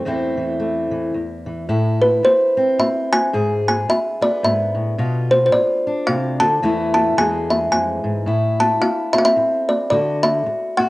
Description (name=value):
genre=acoustic folk duo or small band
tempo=110 BPM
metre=3/4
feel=swing 59% on 8ths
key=A harmonic minor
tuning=A4 = 441 Hz
part: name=kalimba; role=melody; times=0.0-10.9 s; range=B4 to A5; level=-17 LUFS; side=equal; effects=cassette tape
part: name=fingerpicked steel-string acoustic guitar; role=accompaniment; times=0.0-10.9 s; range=E2 to G#4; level=-21 LUFS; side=equal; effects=cassette tape
room=moderate spring reverb, RT60 1.3 s, small room reverb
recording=home recording on cassette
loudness=-16 LUFS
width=side -19 dB against mid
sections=0.0-1.7 A section; 1.7-10.9 B section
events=none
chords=0.1 Am/E; 1.1 N.C.; 1.7 Am; 3.3 G#m; 5.0 Bdim; 6.6 Esus4; 7.2 E; 8.3 Am; 9.9 D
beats=| 0.05 0.60 1.15 | 1.69 2.24 2.79 | 3.34 3.88 4.43 | 4.98 5.53 6.07 | 6.62 7.17 7.72 | 8.27 8.81 9.36 | 9.91 10.46